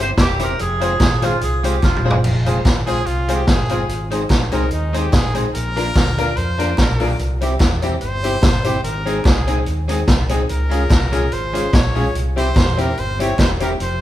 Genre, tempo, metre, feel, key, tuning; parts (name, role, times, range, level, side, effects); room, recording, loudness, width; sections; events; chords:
ska; 146 BPM; 4/4; swing 54% on 8ths; F minor; A4 = 440 Hz
clear tenor saxophone; melody; 0.0-2.0 s; F4 to C5; -22 LUFS; right 2 dB
electric guitar at the edge of break-up; accompaniment; 0.0-13.7 s; G3 to Bb4; -28 LUFS; right 4 dB; vibrato effect
clear upright piano; stabs; 0.0-13.7 s; C4 to C5; -23 LUFS; left 3 dB
fingered electric bass; bass; 0.0-14.0 s; E1 to F2; -22 LUFS; equal
street-band drum kit; drums; 0.2-13.9 s; crash cymbal, hi-hat, kick drum, snare drum, toms; -17 LUFS; equal
group handclap; percussion; 0.2-13.5 s; -36 LUFS; right 1 dB
brilliant trumpet; melody; 2.9-14.0 s; Eb4 to Db5; -25 LUFS; equal
moderate large studio reverb, RT60 1.5 s; band playing live in one room; -15 LUFS; side -13 dB against mid
0.0-2.2 A section; 2.2-14.0 A section
tenor saxophone solo 0.0-2.2; drum fill 1.8-2.2; trumpet solo 2.2-14.0
0.0 C; 0.6 Fm; 3.9 Ab; 5.5 Bb; 7.2 C; 8.8 Ab; 10.5 Db; 12.1 C